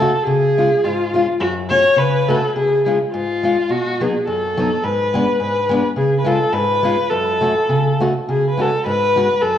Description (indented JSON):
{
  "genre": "alpine folk",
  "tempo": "105 BPM",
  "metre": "2/4",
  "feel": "swing 53% on 8ths",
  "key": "unclear",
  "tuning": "A4 = 436 Hz",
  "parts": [
    { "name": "warm viola", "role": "melody", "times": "0.0-9.6 s", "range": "E#4 to C#5", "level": "-17 LUFS", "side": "left 1 dB", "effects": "none" },
    { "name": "fingerpicked steel-string acoustic guitar", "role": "accompaniment", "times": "0.0-9.6 s", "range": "F#2 to F#4", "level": "-19 LUFS", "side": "left 1 dB", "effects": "none" }
  ],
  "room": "wet recital hall reverb, RT60 1.8 s",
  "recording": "worn, warbling old tape, cassette tape, warbly pitch drift, studio reverb",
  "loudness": "-15 LUFS",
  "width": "side -10 dB against mid",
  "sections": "0.0-9.6 A section",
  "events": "none",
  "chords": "0.3 C#; 1.4 F#m; 2.5 C#; 3.7 B; 4.8 G#dim; 6.0 C#7; 7.1 F#m; 8.3 C#sus4"
}